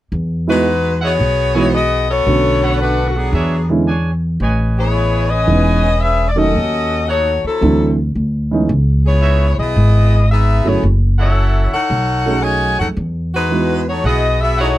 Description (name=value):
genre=jazz, big band swing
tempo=112 BPM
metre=4/4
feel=swing 67% on 8ths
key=E major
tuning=A4 = 443 Hz
part: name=upright bass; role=bass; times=0.1-14.8 s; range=E1 to F2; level=-16 LUFS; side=equal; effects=none
part: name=clear saxophone section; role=melody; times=0.5-14.8 s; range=F#3 to G#5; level=-17 LUFS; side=left 2 dB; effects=none
part: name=warm upright piano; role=accompaniment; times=0.5-13.8 s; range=D3 to G#4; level=-17 LUFS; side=right 3 dB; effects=none
part: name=clear trumpet section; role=stabs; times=1.0-14.8 s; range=D4 to G#5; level=-23 LUFS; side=right 2 dB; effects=none
room=little or no reverb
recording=dry, close 1970s-style studio recording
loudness=-13 LUFS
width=side -14 dB against mid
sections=0.1-14.8 A section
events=none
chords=0.1 Emaj9; 2.3 Bm7; 3.3 E13; 4.4 Amaj9#11; 6.5 D#m7b5; 7.6 D9; 8.7 C#m9; 10.8 F#m7; 11.9 B13; 13.0 Emaj9